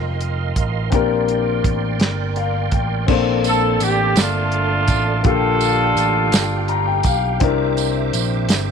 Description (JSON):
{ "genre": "slow gospel", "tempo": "55 BPM (dotted quarters)", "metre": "6/8", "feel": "straight", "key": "Bb major", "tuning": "A4 = 441 Hz", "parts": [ { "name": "warm grand piano", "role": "accompaniment", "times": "0.0-8.7 s", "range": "C3 to Bb5", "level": "-21 LUFS", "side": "left 12 dB", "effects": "none" }, { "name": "bright tonewheel organ", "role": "sustained chords", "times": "0.0-8.7 s", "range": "G4 to D6", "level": "-27 LUFS", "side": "right 14 dB", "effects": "fast rotary speaker, chorus vibrato" }, { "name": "picked electric bass", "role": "bass", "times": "0.0-8.7 s", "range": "F1 to C2", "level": "-22 LUFS", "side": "right 2 dB", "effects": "none" }, { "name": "warm soul drum kit", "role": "drums", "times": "0.2-8.7 s", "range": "crash cymbal, hi-hat, kick drum, snare drum", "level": "-20 LUFS", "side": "right 2 dB", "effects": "none" }, { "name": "tambourine", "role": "percussion", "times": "3.4-8.7 s", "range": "none", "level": "-28 LUFS", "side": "right 20 dB", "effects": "none" }, { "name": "clear horn section", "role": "melody", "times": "3.5-7.1 s", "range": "A3 to A4", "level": "-19 LUFS", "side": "right 2 dB", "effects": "none" } ], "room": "light reverb", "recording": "1960s-style stereo with parts hard left and right", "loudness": "-16 LUFS", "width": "side -6 dB against mid", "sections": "0.0-3.1 A section; 3.1-8.7 B section", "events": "grand piano fill 2.0-3.1, 6.3-7.4", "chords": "0.0 F7sus4; 0.9 Bb69; 5.3 Gm9; 7.4 C9", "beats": "| 0.92 2.00 | 3.09 4.17 | 5.25 6.33 | 7.42 8.50" }